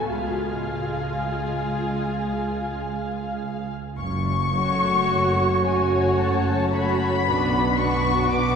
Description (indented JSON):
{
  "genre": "classical, slow romantic movement for string orchestra",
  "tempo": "46-58 BPM",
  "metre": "3/4",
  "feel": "rubato",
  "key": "F# minor",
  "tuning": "A4 = 440 Hz",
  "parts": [
    { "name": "muted symphonic violin section", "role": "melody", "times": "0.0-8.6 s", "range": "G#5 to D6", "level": "-26 LUFS", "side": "left 4 dB", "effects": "none" },
    { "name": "muted symphonic violin section", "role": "second line", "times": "0.0-8.6 s", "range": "F#4 to G#5", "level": "-28 LUFS", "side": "left 2 dB", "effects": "none" },
    { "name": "muted symphonic viola section", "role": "accompaniment", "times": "0.0-8.6 s", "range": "A3 to F#4", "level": "-28 LUFS", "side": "right 2 dB", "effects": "none" },
    { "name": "muted symphonic cello section", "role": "bass", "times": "0.0-8.6 s", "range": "F#2 to A3", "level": "-29 LUFS", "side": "right 1 dB", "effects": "none" },
    { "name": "muted symphonic double bass section", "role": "bass", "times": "0.0-8.6 s", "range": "F#1 to C#2", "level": "-28 LUFS", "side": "right 2 dB", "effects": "none" }
  ],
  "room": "wet cathedral reverb, RT60 5.8 s",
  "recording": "recorded in a church or concert hall",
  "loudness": "-21 LUFS",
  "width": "side -6 dB against mid",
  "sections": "0.0-4.0 A section; 4.0-8.6 A section",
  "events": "none",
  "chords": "0.1 C#; 4.0 F#m; 7.3 Bm",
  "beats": "| 0.12 1.43 2.72 | 3.97 5.11 6.19 | 7.27 8.31"
}